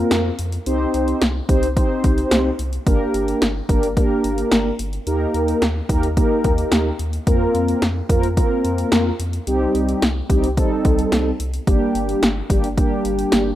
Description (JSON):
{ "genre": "synth-pop", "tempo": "109 BPM", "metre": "4/4", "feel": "straight", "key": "unclear", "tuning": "A4 = 440 Hz", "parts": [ { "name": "mellow synth brass", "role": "accompaniment", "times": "0.0-13.5 s", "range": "G3 to C5", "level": "-20 LUFS", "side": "equal", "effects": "chorus" }, { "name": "round analog bass", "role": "bass", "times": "0.0-13.5 s", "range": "G1 to F2", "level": "-24 LUFS", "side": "equal", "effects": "none" }, { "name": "punchy analog drum machine", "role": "drums", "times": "0.1-13.5 s", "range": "hi-hat, kick drum, snare drum", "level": "-20 LUFS", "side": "equal", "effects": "overdrive" } ], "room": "light reverb, digital ambience", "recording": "rough home demo mix", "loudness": "-16 LUFS", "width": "side -13 dB against mid", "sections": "0.0-13.6 A section", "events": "none", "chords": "0.0 Fsus4; 0.7 Cm; 2.9 Gm; 5.1 Eb; 7.3 Fsus4; 9.5 Cm; 11.7 Gm" }